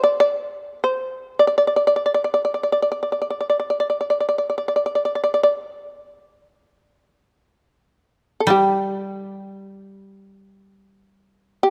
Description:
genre	japanese traditional, Japanese chamber music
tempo	free time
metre	none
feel	none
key	unclear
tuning	A4 = 439 Hz
part	shamisen	melody	0.0-11.7 s	G4 to D5	-20 LUFS	equal	none
part	koto	accompaniment	8.5-11.7 s	G3	-26 LUFS	equal	none
room	light reverb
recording	close, detailed microphones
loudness	-21 LUFS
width	mono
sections	0.0-11.7 A section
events	none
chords	none

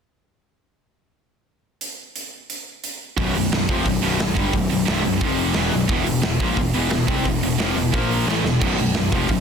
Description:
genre	heavy metal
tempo	176 BPM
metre	4/4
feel	straight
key	unclear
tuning	A4 = 440 Hz
part	big rock drum kit	drums	1.8-9.4 s	crash cymbal, hi-hat, kick drum, snare drum	-24 LUFS	right 1 dB	none
part	distorted electric guitar	riff	3.2-9.4 s	B1 to C4	-23 LUFS	left 10 dB	distortion
part	heavy high-gain guitar	riff	3.2-9.4 s	B1 to C4	-24 LUFS	right 10 dB	distortion
part	fuzz picked electric bass	bass	3.2-9.4 s	B0 to C2	-26 LUFS	equal	overdrive
room	small room ambience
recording	dense, heavily limited modern master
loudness	-18 LUFS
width	side -6 dB against mid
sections	1.8-3.2 A section; 3.2-9.4 B section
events	drum fill 8.3-8.6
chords	1.8 N.C.; 3.2 Bm; 5.2 F5; 5.6 B5; 5.9 E5; 7.9 A#5; 8.3 E5; 8.6 B5

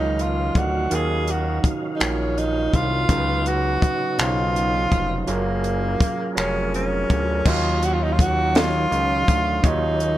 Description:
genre	slow six-eight R&B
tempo	55 BPM (dotted quarters)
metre	6/8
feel	straight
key	Eb minor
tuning	A4 = 442 Hz
part	warm tenor saxophone	melody	0.0-10.2 s	Bb3 to Ab4	-24 LUFS	equal	none
part	overdriven tine electric piano	accompaniment	0.0-10.2 s	Db3 to F5	-26 LUFS	right 4 dB	none
part	tonewheel organ	sustained chords	0.0-10.2 s	Db3 to F5	-34 LUFS	left 1 dB	none
part	fat analog bass	bass	0.0-10.2 s	F1 to Eb2	-25 LUFS	left 1 dB	none
part	compact cocktail drum kit	drums	0.2-10.2 s	crash cymbal, finger snaps, hi-hat, kick drum, snare drum	-22 LUFS	equal	none
room	light reverb, small room ambience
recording	none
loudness	-19 LUFS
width	side -14 dB against mid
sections	0.0-7.5 A section; 7.5-10.2 B section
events	none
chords	0.0 Ebm9; 3.1 Db9sus4; 5.3 Gbmaj9; 7.5 Ebm9

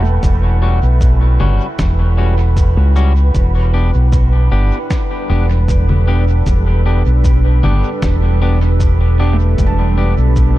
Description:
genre	ambient dub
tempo	77 BPM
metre	4/4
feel	straight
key	unclear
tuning	A4 = 440 Hz
part	deep dark ambient pad	sustained chords	0.0-10.6 s	G3 to G5	-23 LUFS	right 1 dB	chorus, built-in reverb
part	felt-muted upright piano	arpeggios	0.0-3.4, 9.3-10.6 s	A3 to A5	-28 LUFS	right 5 dB	analog delay
part	fingered electric bass	bass	0.0-10.6 s	E1 to C#2	-12 LUFS	equal	none
part	wind-like tuned noise texture	texture	0.0-10.6 s	B4	-29 LUFS	right 8 dB	built-in reverb
part	electronic cabasa, congas and snare drum	drums	0.2-10.5 s	none	-25 LUFS	left 2 dB	small room ambience, dub echo
part	electronic kick drum	drums	0.2-10.5 s	none	-16 LUFS	equal	overdrive, small room ambience
part	clean electric guitar	stabs	0.6-10.1 s	G3 to G4	-24 LUFS	left 4 dB	dub echo
room	digital ambience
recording	echo-heavy mix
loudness	-11 LUFS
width	side -16 dB against mid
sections	0.0-10.6 A section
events	none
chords	0.0 Em69; 3.3 G/E

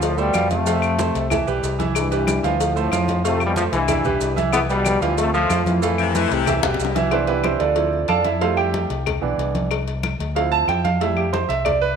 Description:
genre	latin, salsa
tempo	186 BPM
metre	4/4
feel	straight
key	C major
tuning	A4 = 441 Hz
part	bright trombone section	melody	0.0-6.6 s	G2 to B3	-22 LUFS	left 3 dB	none
part	bright grand piano	accompaniment	0.0-12.0 s	E3 to A5	-22 LUFS	right 6 dB	none
part	fingered electric bass	bass	0.0-11.9 s	B1 to F2	-25 LUFS	left 1 dB	none
part	congas	percussion	0.0-12.0 s	none	-29 LUFS	equal	none
part	cowbell and bongos	percussion	0.0-11.8 s	none	-28 LUFS	left 12 dB	none
part	maracas	percussion	0.0-7.1 s	none	-35 LUFS	right 12 dB	none
part	claves	percussion	0.3-11.8 s	none	-31 LUFS	left 11 dB	none
part	bright saxophone section	second line	6.0-7.1 s	Bb2 to E3	-24 LUFS	left 9 dB	none
room	wet echo chamber reverb, RT60 1.8 s, studio ambience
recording	1960s-style stereo with parts hard left and right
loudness	-18 LUFS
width	side -6 dB against mid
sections	0.0-7.1 A section; 7.1-12.0 B section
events	drum fill 6.6-7.1; grand piano solo 7.1-12.0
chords	0.0 Dm7; 0.7 F; 1.3 Cmaj7; 2.6 Dm7; 3.2 F; 3.9 Cmaj7; 5.2 Dm7; 5.8 Fmaj7; 6.5 Cmaj7; 7.8 Dm7; 8.4 Fmaj7; 9.1 Cmaj7; 10.4 Dm7; 11.0 Fmaj7

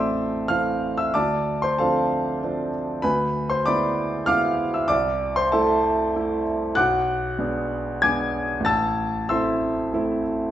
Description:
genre	classical, romantic character piece for solo piano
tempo	96 BPM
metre	3/4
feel	rubato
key	A minor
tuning	A4 = 440 Hz
part	warm concert grand piano	solo	0.0-10.5 s	A1 to A6	-20 LUFS	equal	none
room	wet large studio reverb, RT60 1.1 s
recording	heard from further back in the room, nothing above 7.8 kHz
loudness	-20 LUFS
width	side -12 dB against mid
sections	0.0-10.5 A section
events	none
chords	0.0 Am; 1.1 Dm7; 3.0 E7/D; 4.9 Am/C; 6.8 G#dim/B; 8.7 Am

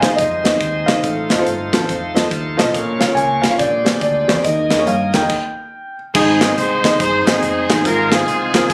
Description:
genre	uptempo gospel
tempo	141 BPM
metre	4/4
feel	swing 63% on 8ths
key	Ab major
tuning	A4 = 437 Hz
part	dark baby grand piano	melody	0.0-6.0 s	D5 to Ab5	-22 LUFS	equal	none
part	warm upright piano	accompaniment	0.0-8.6 s	Ab2 to F5	-22 LUFS	equal	none
part	bright tonewheel organ	sustained chords	0.0-8.7 s	F3 to A5	-27 LUFS	equal	fast rotary speaker, overdrive
part	hollow-body short-scale fingered electric bass	bass	0.0-8.7 s	F1 to G2	-29 LUFS	equal	none
part	modern studio drum kit	drums	0.0-8.7 s	crash cymbal, hi-hat, kick drum, snare drum	-21 LUFS	equal	none
part	warm horn section	melody	6.1-8.7 s	C4 to C5	-19 LUFS	equal	none
room	light reverb, studio ambience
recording	recorded on a phone in the room, club reverb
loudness	-16 LUFS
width	mono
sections	0.0-6.2 A section; 6.2-8.7 B section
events	stop 5.3-6.2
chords	0.0 Ab; 1.0 F7; 2.7 Bbm; 3.6 Bb13; 4.4 Ebsus4; 5.3 N.C.; 6.2 Ab; 7.8 Fm/Ab

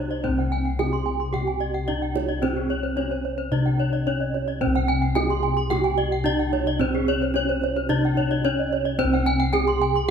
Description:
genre	Balinese gamelan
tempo	110 BPM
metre	4/4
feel	straight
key	C pelog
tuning	A4 = 440 Hz
part	gamelan-type bronze metallophone	melody	0.0-10.1 s	C4 to Ab4-40c	-26 LUFS	right 3 dB	none
part	gamelan-type bronze metallophone	arpeggios	0.0-9.9 s	Ab4-40c to C6	-29 LUFS	right 8 dB	none
part	gamelan-type bossed gongs	bass	0.0-10.1 s	C2 to Db4	-26 LUFS	left 2 dB	none
part	gamelan-type bronze metallophone	arpeggios	0.1-10.1 s	C5 to C6	-28 LUFS	left 5 dB	none
part	kendang	percussion	0.1-10.1 s	none	-33 LUFS	right 6 dB	none
room	moderate recital hall reverb, RT60 1.9 s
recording	none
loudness	-21 LUFS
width	side -7 dB against mid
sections	0.2-10.1 A section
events	none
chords	none

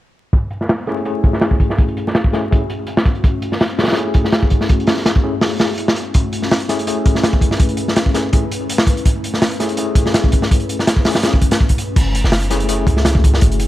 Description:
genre	drum and bass, jungle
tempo	165 BPM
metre	4/4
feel	swing 53% on 16ths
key	F# minor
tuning	A4 = 437 Hz
part	ethereal airy pad	sustained chords	1.7-13.7 s	A3 to B4	-25 LUFS	left 2 dB	ensemble chorus, built-in reverb
part	crunchy breakbeat drum kit	drums	0.3-13.7 s	crash cymbal, hi-hat, kick drum, snare drum	-14 LUFS	equal	low-pass filter on kick, low-pass filter on hats, low-pass filter on cymbals, low-pass filter on snare, low-pass filter on room
part	tine electric piano	stabs	0.9-13.7 s	A3 to G#4	-22 LUFS	left 3 dB	overdrive, fast stereo tremolo, vintage 12-bit sampler grit, low-pass filter, dub echo
part	warm 808-style bass	bass	12.0-13.7 s	F#1 to C#2	-16 LUFS	equal	none
room	small room reverb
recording	vinyl crackle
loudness	-14 LUFS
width	side -15 dB against mid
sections	0.3-12.0 A section; 12.0-13.7 B section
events	filter sweep on drum 0.3-12.0; filter sweep on ambient pad 0.3-12.0; drop 12.0-13.7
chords	0.3 F#m7

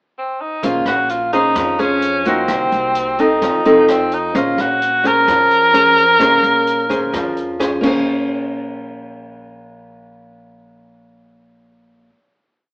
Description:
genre	bossa nova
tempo	129 BPM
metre	4/4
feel	straight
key	Bb minor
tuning	A4 = 441 Hz
part	breathy tenor saxophone	melody	0.2-7.6 s	C4 to Bb4	-14 LUFS	equal	none
part	nylon-string guitar	accompaniment	0.6-12.2 s	C3 to C5	-17 LUFS	equal	none
part	upright bass	bass	0.6-12.1 s	Bb1 to F2	-32 LUFS	equal	none
part	swinging big-band drum kit	drums	0.6-7.9 s	crash cymbal, hi-hat, kick drum, rim click	-29 LUFS	equal	none
room	wet stone room reverb, RT60 1.3 s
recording	band playing live in one room, AM radio sound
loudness	-13 LUFS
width	side -35 dB against mid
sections	0.0-0.6 pickup bar; 0.6-8.1 A section; 8.1-11.8 final hit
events	none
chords	0.0 N.C.; 0.6 Bbm9; 2.5 Cm7b5; 3.4 F7; 4.3 Bbm9

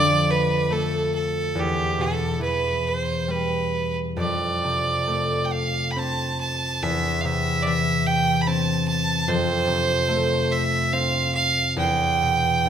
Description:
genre	celtic folk, Celtic slow air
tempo	67-74 BPM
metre	3/4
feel	rubato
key	unclear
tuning	A4 = 442 Hz
part	bright fiddle	melody	0.0-12.7 s	G4 to B5	-23 LUFS	right 3 dB	none
part	concert harp	accompaniment	0.0-12.7 s	E2 to D4	-24 LUFS	left 2 dB	none
room	moderate scoring stage reverb, RT60 1.9 s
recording	minimal, uncompressed stereo recording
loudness	-20 LUFS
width	side -8 dB against mid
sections	0.0-12.7 A section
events	none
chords	0.0 Dm/F; 1.5 Em; 4.2 F6; 6.8 Am/E; 9.3 F; 11.8 Em

